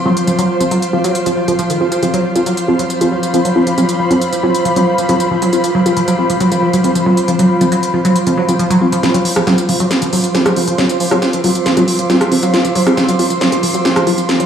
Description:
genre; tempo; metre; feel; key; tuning
driving peak-time techno; 137 BPM; 4/4; straight; unclear; A4 = 440 Hz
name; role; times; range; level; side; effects
metallic inharmonic drone; drone; 0.0-14.5 s; F3 to F4; -21 LUFS; equal; chorus, built-in reverb
ethereal airy pad; texture; 0.0-14.5 s; F4 to C6; -18 LUFS; right 2 dB; ensemble chorus, built-in reverb
tight sequenced synth; riff; 0.1-14.5 s; Eb3 to F4; -17 LUFS; equal; chorus, phaser, tube saturation, tape echo
filtered dub chord stab; stabs; 0.1-14.4 s; F3 to F4; -17 LUFS; equal; phaser, tape echo
techno drum kit; drums; 0.2-14.5 s; hi-hat, rim click, snare drum; -18 LUFS; right 1 dB; overdrive, small room ambience
room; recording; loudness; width
wet lush hall reverb, RT60 2.0 s; played on a big sound system in a bare room, large studio reverb, small room ambience; -11 LUFS; side -8 dB against mid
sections
0.0-9.0 A section; 9.0-14.5 B section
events
build-up 9.0-14.5; drum fill 9.0-14.5; filter sweep on synth arpeggio sound 9.0-14.5; filter sweep on synth stab 9.0-14.5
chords
0.0 F5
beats
| 0.27 0.71 1.15 1.59 | 2.02 2.46 2.90 3.34 | 3.78 4.21 4.65 5.09 | 5.53 5.97 6.41 6.84 | 7.28 7.72 8.16 8.60 | 9.03 9.47 9.91 10.35 | 10.78 11.22 11.66 12.10 | 12.54 12.97 13.41 13.85 | 14.29

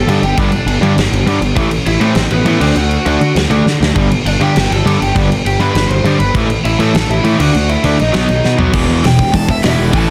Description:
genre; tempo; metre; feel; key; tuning
punk rock; 201 BPM; 4/4; straight; E minor; A4 = 441 Hz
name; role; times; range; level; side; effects
lead guitar through a small cranked amp; melody; 0.0-10.1 s; B3 to C6; -22 LUFS; equal; overdrive, analog delay
fuzz picked electric bass; bass; 0.0-10.1 s; E1 to D3; -18 LUFS; equal; overdrive
crunchy overdriven guitar; riff; 0.1-10.1 s; E2 to D4; -21 LUFS; equal; none
sludgy distorted guitar; riff; 0.1-10.1 s; E2 to D4; -19 LUFS; equal; overdrive
big rock drum kit; drums; 0.1-10.0 s; crash cymbal, hi-hat, kick drum, snare drum, toms; -19 LUFS; equal; soft clipping on kick
room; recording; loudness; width
studio ambience; dense, heavily limited modern master; -13 LUFS; mono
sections
0.0-8.7 A section; 8.7-10.1 B section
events
half time 0.0-8.7; drum fill 3.7, 8.4; lead electric guitar solo 8.7-10.1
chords
0.0 G5; 1.6 Am; 2.6 D; 4.0 G; 6.4 A5; 7.4 D; 8.1 B; 8.7 Em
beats
0.07 | 0.37 0.67 0.97 1.27 | 1.56 1.86 2.16 2.46 | 2.76 3.06 3.36 3.66 | 3.96 4.26 4.56 4.86 | 5.16 5.45 5.75 6.05 | 6.35 6.65 6.95 7.25 | 7.55 7.85 8.14 8.44 | 8.74 9.04 9.34 9.64 | 9.94

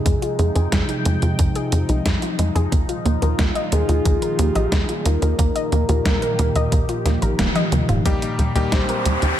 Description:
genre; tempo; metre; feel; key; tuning
synthwave; 90 BPM; 4/4; straight; unclear; A4 = 439 Hz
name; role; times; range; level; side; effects
soft octave-layered synth lead; melody; 0.0-9.4 s; G4 to C5; -27 LUFS; equal; chorus, tremolo, digital delay
phased analog pad; sustained chords; 0.0-9.4 s; Bb2 to G5; -26 LUFS; left 1 dB; phaser, chorus, sidechain pumping
warbly dusty pluck; arpeggios; 0.0-9.4 s; G3 to Eb5; -27 LUFS; right 2 dB; chorus, tape echo
tight sequencer bass; bass; 0.1-9.3 s; Eb1 to F2; -20 LUFS; equal; none
detuned 8-bit digital drum machine; drums; 0.1-9.4 s; hi-hat, snare drum, toms; -25 LUFS; equal; small room ambience, gated reverb
electronic kick drum; drums; 0.1-8.9 s; none; -22 LUFS; equal; small room ambience
bright electric grand piano; stabs; 8.1-9.3 s; G3 to G4; -25 LUFS; left 4 dB; tape echo
riser; sound effects; 8.4-9.4 s; none; -26 LUFS; equal; none
room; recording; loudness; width
light reverb; none; -17 LUFS; side -11 dB against mid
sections
0.0-8.1 A section; 8.1-9.4 B section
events
drum fill 7.4-8.1; band accent 7.4-7.7; riser 8.4-9.4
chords
0.0 Fm7; 2.7 Ebsus2; 8.1 Eb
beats
| 0.06 0.72 1.39 2.06 | 2.72 3.39 4.06 4.72 | 5.39 6.06 6.72 7.39 | 8.06 8.72 9.39

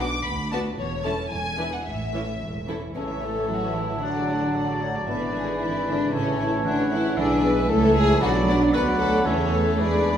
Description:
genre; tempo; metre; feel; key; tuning
quick classical-period movement for symphony orchestra; 114 BPM; 2/4; rubato; A major; A4 = 440 Hz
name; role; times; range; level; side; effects
rich chamber violin section; melody; 0.0-10.2 s; C#5 to D6; -32 LUFS; left 3 dB; none
warm chamber violin section; second line; 0.0-10.2 s; B3 to D5; -27 LUFS; left 2 dB; none
warm chamber viola section; accompaniment; 0.0-10.2 s; D3 to C#5; -32 LUFS; right 1 dB; none
rich chamber cello section; bass; 0.0-10.2 s; D2 to D4; -29 LUFS; right 2 dB; none
warm studio double bass section; bass; 0.0-10.2 s; E1 to E2; -29 LUFS; right 2 dB; none
silver concert flute; second line; 3.0-10.2 s; G#5 to B5; -30 LUFS; left 1 dB; none
warm oboe; second line; 3.0-10.2 s; C#5 to E5; -34 LUFS; equal; none
clear bassoon; accompaniment; 3.0-10.2 s; E3 to F#3; -32 LUFS; right 2 dB; none
clear French horn section; sustained chords; 3.0-10.2 s; E3 to E4; -31 LUFS; left 3 dB; none
warm clarinet; second line; 3.5-10.1 s; A4 to F#5; -32 LUFS; right 1 dB; none
room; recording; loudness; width
wet recital hall reverb, RT60 1.8 s; recorded in a church or concert hall; -21 LUFS; side -9 dB against mid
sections
0.0-3.0 A section; 3.0-10.2 B section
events
none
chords
0.3 Bm/D; 0.8 A/E; 1.3 E7; 1.9 A; 4.0 D/A; 5.1 E7/G#; 6.1 A; 7.2 E7/B; 7.7 A/C#; 8.2 Bm; 8.7 Bm/D; 9.3 A/E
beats
0.25 | 0.77 1.30 | 1.85 2.41 | 2.96 3.49 | 4.03 4.55 | 5.08 5.61 | 6.13 6.66 | 7.17 7.69 | 8.21 8.73 | 9.26 9.79

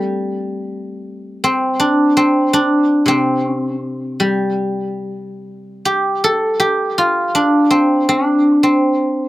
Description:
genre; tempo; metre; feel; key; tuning
chinese traditional, Chinese solo plucked strings; 54 BPM; 4/4; rubato; G shang mode; A4 = 440 Hz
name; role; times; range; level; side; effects
guzheng; solo; 0.0-9.3 s; C3 to A4; -14 LUFS; equal; slapback echo
room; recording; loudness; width
light reverb; recorded outdoors, with no room sound; -13 LUFS; side -17 dB against mid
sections
0.0-9.3 A section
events
none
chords
none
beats
| 0.85 1.97 3.09 4.20 | 5.30 6.41 7.53 8.64

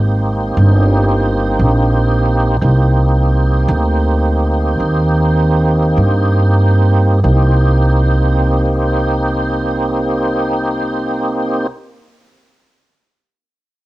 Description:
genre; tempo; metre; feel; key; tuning
slow blues; 45-59 BPM (dotted quarters); 12/8; straight; C minor; A4 = 440 Hz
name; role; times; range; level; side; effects
tonewheel organ; sustained chords; 0.0-11.7 s; Bb3 to G4; -16 LUFS; right 1 dB; overdrive, chorus vibrato, slow rotary speaker, cassette tape, plate reverb
upright bass; bass; 0.0-11.7 s; G1 to G2; -13 LUFS; equal; none
room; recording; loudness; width
light reverb; home recording on cassette; -12 LUFS; side -17 dB against mid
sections
0.0-7.2 A section; 7.2-12.5 B section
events
slowing down 1.2-7.2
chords
0.0 Cm7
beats
0.56 1.58 | 2.61 3.68 4.79 5.97 | 7.24 8.56 9.88 11.20

